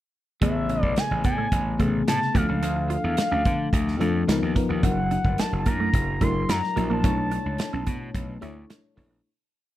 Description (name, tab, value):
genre	polished 1980s jazz-funk pop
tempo	109 BPM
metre	4/4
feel	straight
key	A major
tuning	A4 = 440 Hz
part	expressive portamento lead	melody	0.4-8.7 s	E5 to C6	-28 LUFS	equal	chorus
part	FM electric piano	accompaniment	0.4-9.3 s	C3 to C#5	-28 LUFS	left 3 dB	lush chorus
part	semi-hollow electric guitar	riff	0.4-9.2 s	A3 to F#4	-31 LUFS	right 7 dB	analog chorus
part	gritty slap bass	bass	0.4-9.2 s	F#1 to D3	-27 LUFS	equal	overdrive
part	modern studio drum kit	drums	0.4-9.1 s	hi-hat, kick drum, snare drum	-26 LUFS	right 1 dB	none
room	studio reverb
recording	none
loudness	-21 LUFS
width	side -14 dB against mid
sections	0.4-9.2 verse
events	fade-out 7.0-9.2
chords	0.4 Amaj9; 2.3 Dm; 4.3 C#13; 4.8 F#7b13; 7.0 Bm11